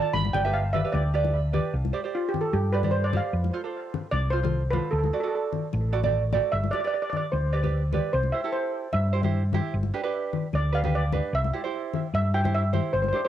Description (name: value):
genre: calypso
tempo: 150 BPM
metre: 4/4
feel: swing 53% on 16ths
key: C major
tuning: A4 = 440 Hz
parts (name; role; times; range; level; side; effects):
- steel pan; melody; 0.0-13.3 s; F4 to B5; -29 LUFS; equal; cassette tape, tape echo
- tenor ukulele; accompaniment; 0.0-13.3 s; D4 to E5; -30 LUFS; right 7 dB; cassette tape
- hollow-body short-scale fingered electric bass; bass; 0.1-13.1 s; G1 to G2; -25 LUFS; equal; none
- congas; percussion; 0.1-13.2 s; none; -32 LUFS; left 7 dB; none
room: light reverb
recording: home recording on cassette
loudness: -23 LUFS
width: side -11 dB against mid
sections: 0.0-1.7 A section; 1.7-13.3 B section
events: steel pan solo 1.7-13.3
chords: 0.1 G; 1.7 Csus2; 3.3 F; 4.9 D; 6.5 G; 8.1 C; 9.7 G; 11.3 C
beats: | 0.14 0.53 0.93 1.33 | 1.73 2.13 2.53 2.93 | 3.33 3.73 4.13 4.54 | 4.94 5.34 5.74 6.14 | 6.54 6.94 7.34 7.74 | 8.14 8.54 8.94 9.34 | 9.74 10.14 10.54 10.94 | 11.34 11.74 12.14 12.54 | 12.94